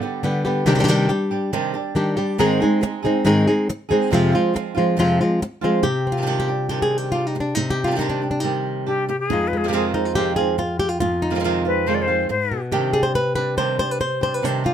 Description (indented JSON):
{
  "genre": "flamenco",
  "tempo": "139 BPM",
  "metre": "4/4",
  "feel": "straight",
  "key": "unclear",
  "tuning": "A4 = 440 Hz",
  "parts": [
    { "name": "flamenco guitar", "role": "stabs", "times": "0.0-14.7 s", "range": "F2 to Ab4", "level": "-24 LUFS", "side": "right 6 dB", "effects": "none" },
    { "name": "flamenco guitar", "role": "melody", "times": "0.2-14.7 s", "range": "F2 to C5", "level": "-19 LUFS", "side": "left 1 dB", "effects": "none" },
    { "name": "bright silver concert flute", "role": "second line", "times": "8.9-12.6 s", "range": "G4 to D5", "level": "-22 LUFS", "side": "left 5 dB", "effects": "none" }
  ],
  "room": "light reverb",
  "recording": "close, detailed microphones",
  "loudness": "-18 LUFS",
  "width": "side -9 dB against mid",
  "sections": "0.0-5.8 A section; 5.8-14.7 B section",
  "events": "none",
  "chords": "0.0 G; 0.7 Cmadd9; 2.4 Ab; 4.1 Fm; 5.8 Cmadd9; 9.3 Fm7; 12.7 Cmadd9"
}